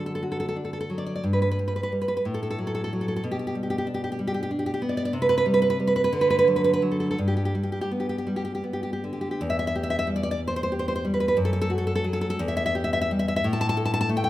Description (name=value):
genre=romantic piece for solo classical guitar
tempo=51-64 BPM (dotted quarters)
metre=6/8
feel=rubato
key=G major, E minor from 9.4 s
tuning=A4 = 440 Hz
part: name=nylon-string guitar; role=solo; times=0.0-14.3 s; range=E2 to A5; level=-23 LUFS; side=equal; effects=none
room=moderate recital hall reverb, RT60 1.6 s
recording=minimal, uncompressed stereo recording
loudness=-23 LUFS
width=side -14 dB against mid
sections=0.0-9.4 A section; 9.4-14.3 B section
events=none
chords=0.0 D; 1.2 N.C.; 2.2 F#m/A; 3.2 G/B; 5.1 C5; 6.1 D; 7.2 G; 9.4 Em; 11.4 N.C.; 12.4 Em; 13.4 N.C.